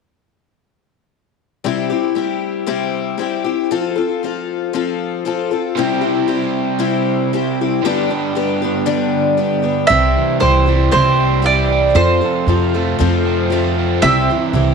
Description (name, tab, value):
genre	rock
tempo	116 BPM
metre	4/4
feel	straight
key	C major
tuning	A4 = 440 Hz
part	picked twelve-string acoustic guitar	accompaniment	1.6-14.7 s	G2 to A4	-18 LUFS	left 8 dB	none
part	overdriven electric guitar	riff	5.8-14.7 s	F2 to G4	-20 LUFS	right 13 dB	none
part	bowl-back mandolin	melody	9.9-14.7 s	C5 to E5	-15 LUFS	right 4 dB	none
part	upright bass	bass	9.9-14.7 s	C2 to F2	-16 LUFS	right 2 dB	none
room	moderate echo chamber reverb, RT60 1.3 s, small room reverb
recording	1960s-style stereo with parts hard left and right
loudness	-14 LUFS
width	side -5 dB against mid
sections	1.6-9.9 A section; 9.9-14.7 B section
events	none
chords	1.6 C; 3.7 F; 5.8 C; 7.8 G; 9.9 C; 12.0 F; 14.0 C